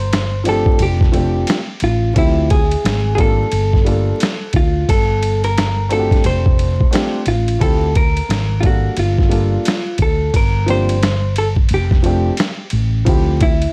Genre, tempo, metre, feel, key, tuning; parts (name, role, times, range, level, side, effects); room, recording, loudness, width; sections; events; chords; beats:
hip hop, jazz-hop; 88 BPM; 4/4; swing 64% on 16ths; F major; A4 = 440 Hz
vintage hollow-body jazz guitar; melody; 0.0-13.7 s; E4 to C5; -23 LUFS; equal; tape echo
mellow fretless electric bass; bass; 0.0-13.7 s; F1 to D2; -20 LUFS; equal; subtle chorus
boom bap sampler-style drum kit; drums; 0.1-13.7 s; hi-hat, kick drum, ride cymbal, snare drum; -20 LUFS; equal
dark grand piano; accompaniment; 0.4-13.5 s; F3 to F5; -23 LUFS; equal
little or no reverb; dry, gritty hardware recording, vinyl crackle; -16 LUFS; mono
0.0-13.7 A section
0.0 Csus24/G; 0.8 F69; 2.2 Dm11; 2.8 Absus2; 3.5 Gm9; 4.9 Csus24/G; 6.2 F69; 7.6 Dm11; 8.3 Absus2; 9.0 Gm9; 10.3 C9sus4/G; 11.7 F69; 13.1 Dm11
0.11 0.80 1.48 | 2.16 2.84 3.52 4.20 | 4.89 5.57 6.25 6.93 | 7.61 8.29 8.98 9.66 | 10.34 11.02 11.70 12.39 | 13.07